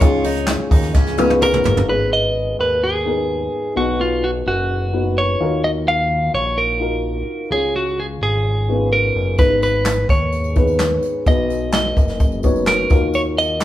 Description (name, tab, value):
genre	piano-driven pop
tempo	128 BPM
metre	4/4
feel	straight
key	unclear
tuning	A4 = 440 Hz
part	clean electric guitar	melody	0.0-13.6 s	F4 to F5	-20 LUFS	right 1 dB	none
part	dark upright piano	accompaniment	0.0-13.6 s	Ab2 to Db5	-21 LUFS	left 2 dB	none
part	picked steel-string acoustic guitar	riff	0.0-1.3 s	Db4 to F4	-26 LUFS	right 4 dB	none
part	fat analog bass	bass	0.0-13.6 s	Gb1 to Eb2	-23 LUFS	equal	none
part	jazz brush drum kit	drums	0.0-1.9, 9.4-13.6 s	handclaps, hi-hat, kick drum, snare drum, toms	-17 LUFS	equal	none
part	tambourine	percussion	0.0-1.8, 9.4-13.6 s	none	-41 LUFS	right 6 dB	none
room	moderate large studio reverb, RT60 0.9 s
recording	band playing live in one room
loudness	-15 LUFS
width	side -13 dB against mid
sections	0.0-1.9 A section; 1.9-13.6 B section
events	drum fill 0.9-1.9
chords	0.0 Dbadd9; 1.9 Abm; 3.8 B; 5.4 Ebmadd9; 7.5 Db; 9.4 Abm; 11.3 B; 12.9 Ebmadd9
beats	| 0.01 0.48 0.95 1.42 | 1.89 2.36 2.83 3.29 | 3.76 4.23 4.70 5.17 | 5.64 6.11 6.58 7.05 | 7.51 7.98 8.45 8.92 | 9.39 9.86 10.33 10.80 | 11.27 11.74 12.21 12.67 | 13.14 13.61